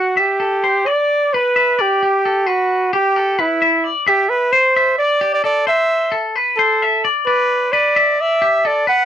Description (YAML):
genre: rock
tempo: 263 BPM (eighths)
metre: 7/8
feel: straight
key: unclear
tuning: A4 = 439 Hz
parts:
  - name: warm trumpet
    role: melody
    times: 0.0-9.1 s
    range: E4 to F#5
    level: -16 LUFS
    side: right 1 dB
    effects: slapback echo
  - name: twangy electric guitar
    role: arpeggios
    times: 0.0-9.1 s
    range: G4 to F#5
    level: -17 LUFS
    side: left 3 dB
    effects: none
room: light reverb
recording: dry, close 1970s-style studio recording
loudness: -13 LUFS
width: side -9 dB against mid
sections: 0.9-9.1 A section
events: none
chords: 0.0 D9sus4 (rootless); 0.9 Em7; 4.1 D7sus2; 7.3 Em7